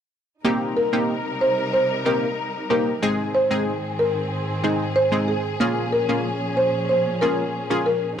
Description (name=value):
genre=dancehall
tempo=93 BPM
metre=4/4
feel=straight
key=unclear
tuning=A4 = 442 Hz
part: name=punchy chord stab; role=accompaniment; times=0.4-7.9 s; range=Ab3 to Ab4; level=-23 LUFS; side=equal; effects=chorus
part: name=muted studio string section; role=sustained chords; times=0.4-8.2 s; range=Ab2 to Bb4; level=-27 LUFS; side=left 1 dB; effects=none
part: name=buzzing marimba with medium mallets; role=melody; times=0.8-8.0 s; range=Ab4 to C5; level=-22 LUFS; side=equal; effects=none
room=light reverb, small room ambience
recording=dry, gritty hardware recording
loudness=-20 LUFS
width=side -8 dB against mid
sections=0.4-8.2 A section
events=none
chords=0.4 Cm7; 3.0 Ab; 5.6 Bbm7